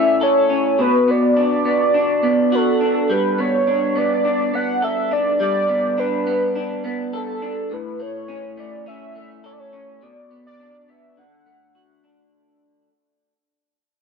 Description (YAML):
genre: dream pop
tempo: 104 BPM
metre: 4/4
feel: straight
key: G lydian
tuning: A4 = 440 Hz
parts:
  - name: warm velvety synth lead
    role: melody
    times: 0.0-12.0 s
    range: A4 to F#5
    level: -19 LUFS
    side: right 1 dB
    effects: chorus, analog delay
  - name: electric guitar through a small old amp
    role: arpeggios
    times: 0.0-12.9 s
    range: A2 to A4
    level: -21 LUFS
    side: left 1 dB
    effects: wide subtle chorus, analog delay
room: light reverb, digital ambience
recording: dry, gritty hardware recording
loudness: -16 LUFS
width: side -5 dB against mid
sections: 0.0-12.3 A section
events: fade-out 0.0-12.3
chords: 0.0 A; 0.8 Bm; 3.1 Gadd9; 7.7 A; 10.0 Bm; 11.2 D